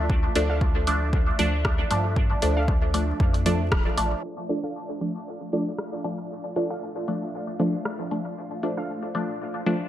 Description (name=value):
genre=dub techno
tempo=116 BPM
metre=4/4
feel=swing 55% on 16ths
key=D minor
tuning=A4 = 441 Hz
part: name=granular cloud pad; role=sustained chords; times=0.0-9.9 s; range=A3 to F5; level=-36 LUFS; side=equal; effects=built-in reverb, sidechain pumping
part: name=filtered dub chord stab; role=stabs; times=0.0-9.8 s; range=F3 to D4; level=-27 LUFS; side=equal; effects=chorus, phaser, vintage 12-bit sampler grit, sidechain pumping, dub echo
part: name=soft dub sub bass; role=bass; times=0.0-4.1 s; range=D1 to G2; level=-26 LUFS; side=equal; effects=sidechain pumping
part: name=electronic kick drum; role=drums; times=0.1-3.8 s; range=none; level=-24 LUFS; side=equal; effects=none
part: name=deep house drum kit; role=drums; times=0.4-9.8 s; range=hi-hat, rim click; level=-32 LUFS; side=left 1 dB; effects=dub echo
part: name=warbly dusty pluck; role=riff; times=0.5-8.9 s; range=D4 to F5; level=-37 LUFS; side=right 1 dB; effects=chorus, sidechain pumping, dub echo
room=light reverb, digital ambience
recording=vinyl crackle, low-pass filter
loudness=-23 LUFS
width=side -12 dB against mid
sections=0.0-4.2 A section; 4.2-9.9 B section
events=band accent 3.7; filter sweep 4.2-9.9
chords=0.0 Dm